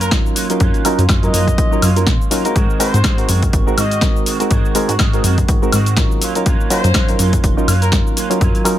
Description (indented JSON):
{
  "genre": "filtered disco house",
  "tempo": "123 BPM",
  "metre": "4/4",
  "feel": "swing 57% on 16ths",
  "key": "Ab mixolydian",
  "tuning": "A4 = 440 Hz",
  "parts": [
    { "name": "warm trumpet section", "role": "melody", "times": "0.0-7.9 s", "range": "Bb4 to Eb5", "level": "-24 LUFS", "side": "left 3 dB", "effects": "vintage 12-bit sampler grit, sidechain pumping" },
    { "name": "electric guitar with an envelope filter", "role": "riff", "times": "0.0-8.8 s", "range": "Eb3 to Gb4", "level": "-24 LUFS", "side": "right 6 dB", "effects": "analog chorus, sidechain pumping" },
    { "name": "plucky analog bass", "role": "bass", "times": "0.0-8.5 s", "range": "Gb1 to Bb2", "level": "-17 LUFS", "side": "equal", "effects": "sidechain pumping" },
    { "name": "punchy analog drum machine", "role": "drums", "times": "0.0-8.8 s", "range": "hi-hat, shaker, snare drum, woodblock", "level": "-20 LUFS", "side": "left 1 dB", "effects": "sidechain pumping on hats, sidechain pumping on perc" },
    { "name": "reed electric piano", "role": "accompaniment", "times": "0.1-8.8 s", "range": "Gb3 to Bb4", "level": "-20 LUFS", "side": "right 1 dB", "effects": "phaser, sidechain pumping" },
    { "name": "electronic kick drum", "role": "drums", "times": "0.1-8.5 s", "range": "none", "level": "-16 LUFS", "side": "equal", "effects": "none" }
  ],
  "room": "little or no reverb",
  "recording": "none",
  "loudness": "-12 LUFS",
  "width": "side -12 dB against mid",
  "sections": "0.0-8.8 A section",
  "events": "none",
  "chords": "0.0 Ebm9/Gb; 2.6 Ab7; 6.2 Ebm9/Gb"
}